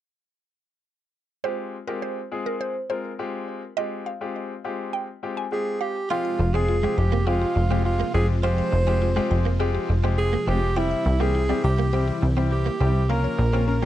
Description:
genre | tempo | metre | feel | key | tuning
pop | 103 BPM | 4/4 | straight | F harmonic minor | A4 = 440 Hz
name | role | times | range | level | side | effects
mallet-like synth pluck | melody | 1.4-5.9 s | Bb4 to Ab5 | -31 LUFS | right 4 dB | chorus, phaser, tape echo
clear concert grand piano | accompaniment | 1.4-13.9 s | G3 to Bb4 | -30 LUFS | left 5 dB | none
breathy alto saxophone | melody | 5.5-13.9 s | E4 to C5 | -26 LUFS | right 3 dB | tape echo
supersaw chords | sustained chords | 6.1-13.9 s | C3 to G5 | -32 LUFS | equal | none
mallet-like synth pluck | arpeggios | 6.1-13.9 s | Ab3 to G5 | -34 LUFS | left 7 dB | chorus, tape echo
direct-recorded clean electric guitar | riff | 6.1-13.9 s | G3 to F4 | -31 LUFS | right 7 dB | ensemble chorus
plucky analog bass | bass | 6.4-13.9 s | F1 to C2 | -22 LUFS | equal | none
room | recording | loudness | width
light reverb | dry, close 1970s-style studio recording | -21 LUFS | side -13 dB against mid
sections
1.4-6.1 A section; 6.1-13.9 B section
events
none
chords
1.4 Fmadd9; 10.8 C; 13.1 Bbm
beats
| 1.45 2.03 2.61 3.19 | 3.77 4.36 4.94 5.52 | 6.11 6.69 7.27 7.85 | 8.44 9.02 9.60 10.18 | 10.77 11.35 11.93 12.51 | 13.10 13.68

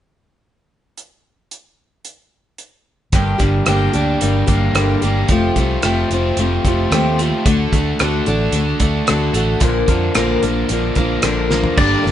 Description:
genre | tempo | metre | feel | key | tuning
folk rock and heartland rock | 111 BPM | 4/4 | straight | G minor | A4 = 439 Hz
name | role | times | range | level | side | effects
damped 70s drum kit | drums | 1.0-12.1 s | crash cymbal, hi-hat, kick drum, rim click, snare drum, toms | -19 LUFS | equal | none
picked steel-string acoustic guitar | accompaniment | 3.1-12.1 s | G2 to Bb4 | -18 LUFS | left 2 dB | none
overdriven electric guitar | riff | 3.1-12.1 s | G2 to D4 | -21 LUFS | right 1 dB | none
fingered electric bass | bass | 3.1-12.1 s | F1 to F2 | -20 LUFS | right 1 dB | none
pedal steel guitar | melody | 11.8-12.1 s | D5 | -18 LUFS | left 3 dB | none
room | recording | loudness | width
moderate stone room reverb, RT60 1.0 s | band playing live in one room, nothing above 10.4 kHz | -14 LUFS | side -11 dB against mid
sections
1.0-3.1 A section; 3.1-11.8 B section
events
drum fill 11.5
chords
1.0 N.C.; 3.1 Gm; 5.3 Fadd9; 7.5 D; 9.6 Bb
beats
| 0.98 1.52 2.06 2.60 | 3.14 3.68 4.22 4.75 | 5.29 5.83 6.38 6.92 | 7.46 8.00 8.54 9.07 | 9.62 10.16 10.70 11.24 | 11.78

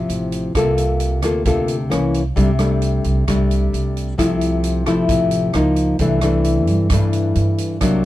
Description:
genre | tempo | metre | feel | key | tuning
bossa nova | 132 BPM | 4/4 | straight | C major | A4 = 440 Hz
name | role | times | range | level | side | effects
nylon-string guitar | accompaniment | 0.0-8.1 s | G2 to A4 | -18 LUFS | left 2 dB | none
upright bass | bass | 0.0-8.1 s | A1 to G2 | -20 LUFS | right 1 dB | none
swinging big-band drum kit | drums | 0.1-7.9 s | hi-hat, kick drum, rim click | -25 LUFS | right 1 dB | none
room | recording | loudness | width
little or no reverb | dark, warm production | -15 LUFS | side -15 dB against mid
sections
0.0-8.1 A section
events
none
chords
0.0 Fmaj7/A; 0.6 C13sus4; 1.9 C7b9; 2.4 Gsus24/C; 4.2 Fmaj7; 5.5 Db69; 6.0 C69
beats
0.10 | 0.56 1.01 1.46 1.92 | 2.37 2.82 3.28 3.73 | 4.18 4.64 5.09 5.54 | 6.00 6.45 6.90 7.36 | 7.81

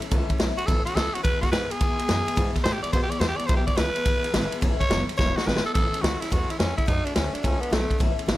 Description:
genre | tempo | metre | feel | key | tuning
rockabilly | 213 BPM | 4/4 | swing 65% on 8ths | A major | A4 = 435 Hz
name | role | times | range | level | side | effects
picked steel-string acoustic guitar | accompaniment | 0.0-8.4 s | E2 to F#4 | -32 LUFS | left 5 dB | none
upright bass | bass | 0.0-8.4 s | E1 to B2 | -29 LUFS | equal | none
vintage drum kit | drums | 0.0-8.4 s | kick drum, ride cymbal, snare drum | -24 LUFS | equal | none
growling tenor saxophone | melody | 0.6-8.0 s | A3 to D5 | -27 LUFS | equal | none
room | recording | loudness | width
small room ambience | none | -22 LUFS | side -16 dB against mid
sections
0.0-5.7 A section; 5.7-8.4 B section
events
tenor saxophone solo 0.0-5.7; drum fill 5.2-5.7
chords
0.0 A; 1.2 E; 4.6 A; 5.2 E; 5.7 A; 6.9 D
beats
| 0.12 0.40 0.68 0.96 | 1.24 1.52 1.81 2.09 | 2.37 2.65 2.93 3.21 | 3.50 3.78 4.06 4.34 | 4.62 4.90 5.18 5.47 | 5.75 6.03 6.31 6.59 | 6.87 7.15 7.43 7.71 | 8.00 8.28

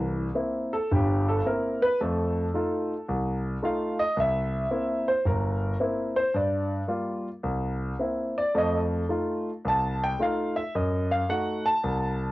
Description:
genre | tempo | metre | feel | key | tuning
solo jazz | 110 BPM | 4/4 | swing 68% on 8ths, rubato | C mixolydian | A4 = 439 Hz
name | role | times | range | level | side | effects
warm grand piano | solo | 0.0-12.3 s | G1 to A5 | -24 LUFS | equal | cassette tape
room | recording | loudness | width
wet booth ambience, RT60 0.2 s | home recording on cassette | -24 LUFS | side -18 dB against mid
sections
0.0-12.3 A section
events
grand piano solo 0.0-12.3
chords
0.0 C7; 2.0 F7; 4.2 C7; 6.3 Gm7; 7.4 C7; 8.5 F7; 10.7 F#dim7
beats
0.34 0.90 1.45 | 1.99 2.54 3.08 3.62 | 4.17 4.71 5.25 5.79 | 6.33 6.88 7.43 7.99 | 8.55 9.10 9.65 10.20 | 10.74 11.29 11.83

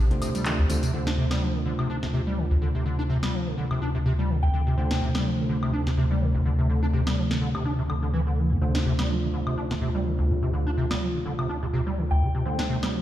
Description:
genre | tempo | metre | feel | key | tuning
acid house | 125 BPM | 4/4 | swing 55% on 16ths | D minor | A4 = 441 Hz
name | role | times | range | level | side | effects
warm analog pad | sustained chords | 0.0-13.0 s | D2 to G4 | -26 LUFS | equal | chorus
acid bass, square | riff | 0.0-13.0 s | D2 to D4 | -27 LUFS | equal | overdrive, ensemble chorus, tape echo
overdriven tine electric piano | stabs | 0.1-13.0 s | A3 to D5 | -35 LUFS | right 4 dB | analog chorus, low-pass filter, tape echo
booming analog drum machine | drums | 0.1-12.9 s | handclaps, hi-hat, snare drum, tambourine, woodblock | -33 LUFS | equal | none
soft synth bell | melody | 4.4-4.9, 12.1-12.6 s | G5 | -34 LUFS | left 3 dB | chorus, phaser, tape echo
room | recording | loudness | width
light reverb, digital ambience | played on a big sound system in a bare room, stone room reverb | -23 LUFS | side -12 dB against mid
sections
0.9-13.0 A section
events
filter sweep on analog synth pad 0.9-13.0; filter sweep on tine electric piano 0.9-13.0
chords
0.0 Dm7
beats
0.46 | 0.94 1.42 1.90 2.38 | 2.86 3.34 3.82 4.30 | 4.78 5.26 5.74 6.22 | 6.70 7.18 7.66 8.14 | 8.62 9.10 9.58 10.06 | 10.54 11.02 11.50 11.98 | 12.46 12.94

